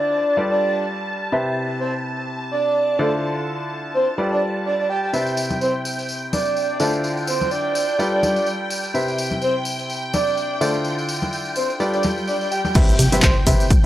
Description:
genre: piano house.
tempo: 126 BPM.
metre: 4/4.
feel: swing 56% on 16ths.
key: C major.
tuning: A4 = 438 Hz.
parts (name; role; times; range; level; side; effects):
breathy flute-like synth lead; melody; 0.0-13.3 s; A4 to G5; -22 LUFS; right 1 dB; lush chorus, tape echo.
string machine, violins; sustained chords; 0.0-13.9 s; G5 to A5; -29 LUFS; equal; ensemble chorus, sidechain pumping.
clear grand piano; riff; 0.0-13.6 s; C3 to E5; -24 LUFS; left 1 dB; sidechain pumping, low-pass filter.
tambourine and congas; percussion; 5.1-13.8 s; none; -28 LUFS; left 2 dB; none.
organ-like FM bass; bass; 12.8-13.8 s; C2 to C3; -19 LUFS; equal; sidechain pumping.
electronic kick drum; drums; 12.8-13.8 s; none; -16 LUFS; equal; none.
punchy analog drum machine; drums; 12.8-13.8 s; crash cymbal, handclaps, hi-hat, shaker; -22 LUFS; equal; none.
impact; sound effects; 12.8-13.9 s; none; -22 LUFS; equal; none.
room: light reverb, digital ambience.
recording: dry, gritty hardware recording.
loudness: -18 LUFS.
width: side -13 dB against mid.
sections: 0.0-12.8 A section; 12.8-13.9 B section.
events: filter sweep on string machine 0.0-12.8; drop 12.8-13.9; impact 12.8-13.9.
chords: 0.4 G9; 1.3 Cmaj7; 3.0 Dm9; 4.2 G9; 5.1 Cmaj7; 6.8 Dm9; 8.0 G9; 8.9 Cmaj7; 10.6 Dm9; 11.8 G9; 12.8 Cmaj7.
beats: 0.37 0.85 | 1.32 1.80 2.28 2.75 | 3.23 3.71 4.18 4.66 | 5.13 5.61 6.09 6.56 | 7.04 7.51 7.99 8.47 | 8.94 9.42 9.89 10.37 | 10.85 11.32 11.80 12.28 | 12.75 13.23 13.71.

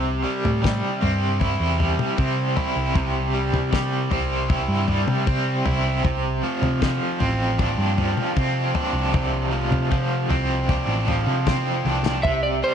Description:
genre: psychedelic rock.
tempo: 78 BPM.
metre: 4/4.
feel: straight.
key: C major.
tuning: A4 = 440 Hz.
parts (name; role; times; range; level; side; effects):
cranked stack guitar; riff; 0.0-12.7 s; C3 to E4; -23 LUFS; right 1 dB; overdrive, tremolo.
hollow-body short-scale picked electric bass; bass; 0.0-12.6 s; A1 to C3; -24 LUFS; equal; none.
damped 70s drum kit; drums; 0.5-12.4 s; kick drum, snare drum, toms; -25 LUFS; left 2 dB; none.
electric slide guitar; melody; 12.2-12.7 s; C5 to E5; -21 LUFS; right 2 dB; slapback echo.
room: light reverb, small room reverb.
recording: 1960s-style stereo.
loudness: -20 LUFS.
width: side -8 dB against mid.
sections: 0.0-12.2 A section.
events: drum fill 11.9-12.2.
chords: 0.0 C; 6.0 Dm7; 12.2 C.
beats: 0.64 1.41 2.18 | 2.95 3.72 4.49 5.27 | 6.04 6.81 7.59 8.36 | 9.14 9.91 10.69 11.46 | 12.24.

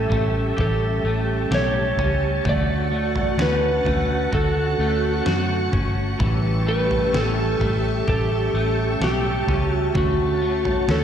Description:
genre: dream pop.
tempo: 64 BPM.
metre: 4/4.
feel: straight.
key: A mixolydian.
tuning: A4 = 439 Hz.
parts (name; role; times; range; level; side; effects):
electric slide guitar; melody; 0.0-11.0 s; F#4 to D5; -24 LUFS; right 1 dB; diffuse ambient delay.
electric guitar at the edge of break-up; accompaniment; 0.0-11.0 s; A2 to G4; -31 LUFS; right 4 dB; tremolo, ensemble chorus.
ensemble organ-string; sustained chords; 0.0-11.0 s; F#4 to C#6; -27 LUFS; equal; ensemble chorus.
electric guitar at the edge of break-up; arpeggios; 0.0-11.0 s; E3 to G4; -28 LUFS; left 2 dB; analog chorus, diffuse ambient delay.
vintage muted fingered electric bass; bass; 0.0-11.0 s; G1 to F#2; -24 LUFS; equal; none.
detuned 8-bit digital drum machine; drums; 0.1-11.0 s; kick drum, snare drum, toms; -27 LUFS; equal; none.
room: wet lush hall reverb, RT60 2.7 s.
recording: dreamy mix soaked in reverb.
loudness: -19 LUFS.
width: side -9 dB against mid.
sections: 0.0-11.0 A section.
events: none.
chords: 0.0 A7; 2.5 Dmaj7; 6.2 A7; 10.0 Dmaj7.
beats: 0.58 1.51 | 2.45 3.39 4.33 5.26 | 6.20 7.14 8.08 9.02 | 9.95 10.89.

